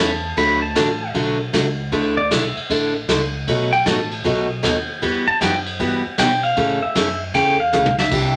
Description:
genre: country, western swing.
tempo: 155 BPM.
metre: 4/4.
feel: swing 65% on 8ths.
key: D major.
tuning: A4 = 440 Hz.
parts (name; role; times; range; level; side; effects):
pedal steel guitar; melody; 0.0-8.3 s; D5 to B5; -22 LUFS; equal; none.
picked steel-string acoustic guitar; accompaniment; 0.0-8.3 s; B2 to B4; -23 LUFS; equal; none.
upright bass; bass; 0.0-8.4 s; A1 to B2; -30 LUFS; equal; none.
vintage brush drum kit; drums; 0.4-8.2 s; crash cymbal, hi-hat, kick drum, ride cymbal, snare drum, toms; -26 LUFS; equal; none.
room: wet studio reverb, RT60 0.5 s.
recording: none.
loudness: -19 LUFS.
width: mono.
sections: 0.0-8.4 A section.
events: pedal steel guitar solo 0.0-8.4; drum fill 7.7-8.1.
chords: 0.4 D; 1.9 Dsus2; 3.5 B7; 5.0 Emadd9; 6.6 A.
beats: | 0.37 0.76 1.15 1.53 | 1.92 2.31 2.70 3.08 | 3.47 3.86 4.25 4.63 | 5.02 5.41 5.80 6.18 | 6.57 6.96 7.34 7.73 | 8.12.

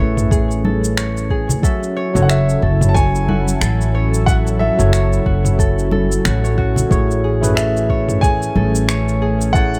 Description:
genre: sunset chillout.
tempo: 91 BPM.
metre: 4/4.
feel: swing 57% on 16ths.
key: A major.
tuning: A4 = 439 Hz.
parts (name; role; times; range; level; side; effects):
clear grand piano; melody; 0.0-9.8 s; E5 to A5; -25 LUFS; equal; digital delay.
barky tine electric piano; accompaniment; 0.0-9.8 s; F#3 to G#5; -25 LUFS; equal; overdrive, digital delay.
lush unison pad; sustained chords; 0.0-9.8 s; F#3 to A4; -28 LUFS; equal; chorus.
concert harp; arpeggios; 0.0-9.8 s; F#4 to C#5; -27 LUFS; equal; digital delay.
upright bass; bass; 0.0-9.8 s; F#1 to A1; -20 LUFS; equal; none.
deep house drum kit; drums; 0.2-9.8 s; finger snaps, shaker, toms; -24 LUFS; equal; none.
electronic kick drum; drums; 0.3-9.7 s; none; -20 LUFS; equal; overdrive.
congas; percussion; 0.6-8.7 s; none; -25 LUFS; equal; none.
room: light reverb, small room ambience.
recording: none.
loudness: -16 LUFS.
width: mono.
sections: 0.0-9.8 A section.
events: none.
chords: 0.0 Amaj7; 1.6 F#m7; 6.9 Amaj7.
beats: 0.31 0.97 | 1.63 2.29 2.95 3.61 | 4.27 4.93 5.59 6.25 | 6.91 7.57 8.23 8.88 | 9.54.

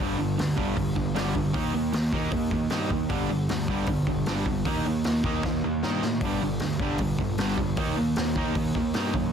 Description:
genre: punk rock.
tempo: 154 BPM.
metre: 4/4.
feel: straight.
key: G minor.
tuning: A4 = 441 Hz.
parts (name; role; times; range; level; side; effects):
distorted electric guitar; riff; 0.0-9.3 s; G2 to Eb4; -28 LUFS; right 10 dB; overdrive.
raw garage guitar; riff; 0.0-9.3 s; G2 to Eb4; -30 LUFS; left 11 dB; overdrive, spring reverb.
fuzz picked electric bass; bass; 0.0-9.3 s; G1 to A2; -31 LUFS; equal; overdrive.
raw garage drum kit; drums; 0.0-9.2 s; hi-hat, kick drum, snare drum; -31 LUFS; equal; none.
room: light reverb.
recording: dense, heavily limited modern master.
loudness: -24 LUFS.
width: side -7 dB against mid.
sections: 0.0-9.3 A section.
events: drum fill 5.4-6.2.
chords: 0.0 G5; 1.6 Eb5; 3.1 G5; 4.7 Eb5; 6.2 G5; 7.8 Eb5.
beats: | 0.00 0.39 0.78 1.16 | 1.55 1.94 2.33 2.72 | 3.11 3.50 3.89 4.28 | 4.66 5.05 5.44 5.83 | 6.22 6.61 7.00 7.39 | 7.78 8.17 8.56 8.95.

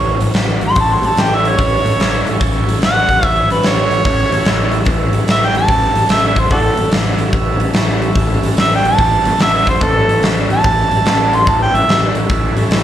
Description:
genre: blues rock power trio and southern rock.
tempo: 146 BPM.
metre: 4/4.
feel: swing 66% on 8ths.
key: A major.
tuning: A4 = 440 Hz.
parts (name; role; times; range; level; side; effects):
warm harmonica; melody; 0.0-12.0 s; D4 to C6; -15 LUFS; right 1 dB; overdrive, slapback echo.
fuzz fingered electric bass; bass; 0.0-12.8 s; A1; -18 LUFS; equal; overdrive.
huge arena drum kit; drums; 0.2-12.8 s; hi-hat, kick drum, snare drum; -16 LUFS; equal; none.
overdriven tonewheel organ; sustained chords; 0.8-12.8 s; C#4 to C#5; -24 LUFS; right 3 dB; slow rotary speaker.
room: studio ambience.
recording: live gig heard through the venue's PA, club reverb.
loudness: -11 LUFS.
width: side -11 dB against mid.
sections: 0.0-12.8 A section.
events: harmonica solo 0.0-12.8.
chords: 0.0 A.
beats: 0.36 | 0.77 1.18 1.59 2.00 | 2.42 2.83 3.24 3.65 | 4.06 4.47 4.88 5.29 | 5.70 6.11 6.53 6.94 | 7.35 7.76 8.17 8.58 | 9.00 9.41 9.82 10.23 | 10.65 11.06 11.47 11.88 | 12.30 12.71.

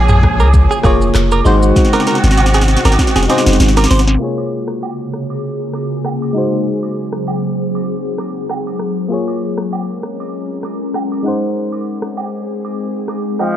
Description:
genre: afrobeats.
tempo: 98 BPM.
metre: 4/4.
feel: swing 55% on 16ths.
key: Bb minor.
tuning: A4 = 439 Hz.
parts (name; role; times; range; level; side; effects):
clear horn section; second line; 0.0-3.9 s; Eb3 to Ab4; -20 LUFS; right 2 dB; digital delay.
FM electric piano; accompaniment; 0.0-13.6 s; Ab3 to Gb5; -20 LUFS; left 2 dB; chorus.
ethereal airy pad; sustained chords; 0.0-13.6 s; C3 to Bb4; -21 LUFS; equal; ensemble chorus, built-in reverb, phaser.
punchy sub bass; bass; 0.0-4.2 s; F1 to Db2; -12 LUFS; equal; none.
direct-recorded clean electric guitar; riff; 0.1-4.0 s; Ab4 to C5; -20 LUFS; right 5 dB; digital delay.
afro-pop drum kit; drums; 0.1-13.6 s; handclaps, hi-hat, kick drum, rim click, shaker, snare drum, toms; -16 LUFS; equal; none.
agogo bells and woodblock; percussion; 0.4-13.6 s; none; -26 LUFS; right 6 dB; none.
growling alto saxophone; melody; 13.4-13.6 s; F3; -18 LUFS; equal; none.
room: light reverb.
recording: dark, warm production, low-pass filter.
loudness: -13 LUFS.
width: side -11 dB against mid.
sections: 0.0-4.2 A section; 4.2-13.6 B section.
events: drum fill 1.8-4.2; filter sweep 4.2-13.6; FM electric piano fill 13.1-13.6.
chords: 0.0 Bbm7; 1.5 Ab7; 4.2 Bbm7; 6.4 Ab7; 9.1 Bbm7; 11.3 Ab7.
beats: 0.54 1.15 | 1.76 2.38 2.99 3.60 | 4.21 4.83 5.44 6.05 | 6.66 7.27 7.89 8.50 | 9.11 9.72 10.34 10.95 | 11.56 12.17 12.78 13.40.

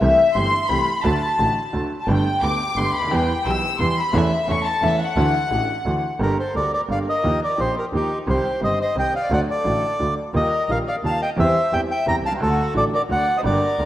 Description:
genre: tango.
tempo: 174 BPM.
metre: 3/4.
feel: rubato.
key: G minor from 6.2 s.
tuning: A4 = 440 Hz.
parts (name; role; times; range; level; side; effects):
rich studio violin section; second line; 0.0-13.9 s; Eb4 to E6; -23 LUFS; left 2 dB; none.
bright upright piano; accompaniment; 0.0-13.9 s; G1 to A4; -24 LUFS; right 2 dB; none.
clear double bass; bass; 0.0-13.9 s; G1 to E2; -25 LUFS; right 1 dB; none.
bandoneon; melody; 6.2-13.9 s; G4 to Bb5; -21 LUFS; equal; none.
room: wet lush hall reverb, RT60 2.7 s.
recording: rough home demo mix.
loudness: -18 LUFS.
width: side -13 dB against mid.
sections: 0.0-6.2 A section; 6.2-13.9 B section.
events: violin section solo 0.0-6.2.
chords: 0.0 C6; 1.0 D; 2.1 Gadd9; 3.1 Em; 4.1 A/E; 5.2 Dadd9; 6.2 Gmadd9; 7.2 Ebadd9; 8.3 Cm; 9.3 D; 10.3 Ebadd9; 11.4 C/E; 12.4 D.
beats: | 0.02 0.36 0.70 | 1.05 1.39 1.73 | 2.08 2.42 2.77 | 3.11 3.45 3.79 | 4.14 4.48 4.83 | 5.17 5.51 5.86 | 6.21 6.55 6.90 | 7.24 7.58 7.93 | 8.27 8.62 8.96 | 9.31 9.65 10.00 | 10.34 10.69 11.04 | 11.38 11.72 12.07 | 12.41 12.76 13.10 | 13.45 13.79.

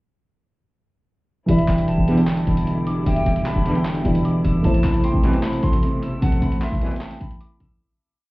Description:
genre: hip hop, trap.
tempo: 152 BPM.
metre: 4/4.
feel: half-time.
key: E minor.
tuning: A4 = 445 Hz.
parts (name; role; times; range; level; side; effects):
concert harp; melody; 1.5-8.3 s; E5 to E6; -30 LUFS; equal; low-pass filter, ping-pong delay.
hollow concert flute; second line; 1.5-7.0 s; E5 to B5; -34 LUFS; left 1 dB; ping-pong delay.
felt-muted upright piano; accompaniment; 1.5-7.8 s; E3 to D5; -23 LUFS; equal; low-pass filter.
muted symphonic string section; sustained chords; 1.5-7.8 s; B2 to E4; -25 LUFS; equal; none.
short 808-style bass; bass; 1.5-7.8 s; D1 to A1; -21 LUFS; equal; none.
boom bap sampler-style drum kit; drums; 1.5-7.7 s; handclaps, hi-hat; -35 LUFS; right 1 dB; none.
warm brass ensemble; stabs; 2.1-6.9 s; C2 to G3; -22 LUFS; right 1 dB; none.
room: studio ambience.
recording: heard muffled through a wall, club reverb, EQ.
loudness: -17 LUFS.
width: side -20 dB against mid.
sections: 1.5-7.8 hook.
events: fade-out 6.2-7.8.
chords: 1.5 Em7; 4.6 Amadd9.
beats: | 1.49 1.88 2.27 2.67 | 3.06 3.46 3.85 4.25 | 4.64 5.04 5.43 5.83 | 6.22 6.62 7.01 7.41.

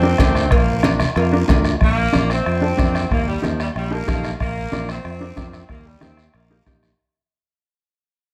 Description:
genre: latin, cumbia.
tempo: 186 BPM.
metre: 4/4.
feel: straight.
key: Bb major.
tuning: A4 = 439 Hz.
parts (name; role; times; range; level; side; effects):
warm saxophone section; melody; 0.0-6.8 s; F3 to C4; -27 LUFS; equal; none.
mellow electric guitar; accompaniment; 0.0-6.9 s; D4 to Bb4; -26 LUFS; equal; none.
fingered electric bass; bass; 0.0-6.9 s; Bb1 to F2; -24 LUFS; equal; none.
bombo; percussion; 0.2-7.0 s; none; -23 LUFS; equal; none.
congas; percussion; 0.2-6.8 s; none; -28 LUFS; equal; none.
cowbell and timbales; percussion; 0.2-1.7 s; none; -30 LUFS; equal; none.
guiro; percussion; 0.2-7.0 s; none; -38 LUFS; equal; none.
room: light reverb.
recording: none.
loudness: -19 LUFS.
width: mono.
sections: 0.0-1.8 A section; 1.8-7.0 B section.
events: fade-out 1.8-7.0.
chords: 0.0 Bb; 3.1 Eb; 4.4 Bb; 5.7 Eb.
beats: 0.20 | 0.52 0.84 1.17 1.49 | 1.81 2.14 2.46 2.78 | 3.11 3.43 3.75 4.08 | 4.40 4.72 5.04 5.37 | 5.69 6.01 6.34 6.66.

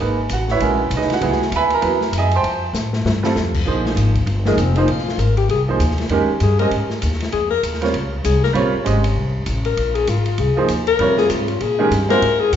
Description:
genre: modal jazz.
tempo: 196 BPM.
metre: 4/4.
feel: swing 60% on 8ths.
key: C# dorian, Bb dorian from 3.7 s.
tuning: A4 = 441 Hz.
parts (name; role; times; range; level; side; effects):
clear baby grand piano; accompaniment; 0.0-12.2 s; C3 to B#5; -20 LUFS; right 4 dB; none.
upright bass; bass; 0.0-12.6 s; F1 to Bb2; -20 LUFS; left 1 dB; none.
open jazz drum kit; drums; 0.3-12.6 s; crash cymbal, hi-hat, kick drum, ride cymbal, snare drum; -26 LUFS; left 2 dB; none.
breathy alto saxophone; second line; 4.5-12.6 s; Ab3 to Bb4; -20 LUFS; left 6 dB; none.
room: wet recital hall reverb, RT60 1.7 s.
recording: recorded in a church or concert hall, nothing above 7.7 kHz.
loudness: -16 LUFS.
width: side -9 dB against mid.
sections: 0.0-3.7 A section; 3.7-12.6 A section.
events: drum fill 2.7-3.4; alto saxophone solo 3.7-12.6.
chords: 0.0 C#m9; 2.4 Fadd9; 3.7 Bb9sus4.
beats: | 0.00 0.30 0.61 0.91 | 1.22 1.52 1.83 2.14 | 2.44 2.75 3.05 3.36 | 3.67 3.97 4.28 4.58 | 4.89 5.19 5.50 5.81 | 6.11 6.42 6.72 7.03 | 7.33 7.64 7.95 8.25 | 8.56 8.86 9.17 9.47 | 9.78 10.08 10.39 10.70 | 11.00 11.30 11.61 11.91 | 12.22 12.53.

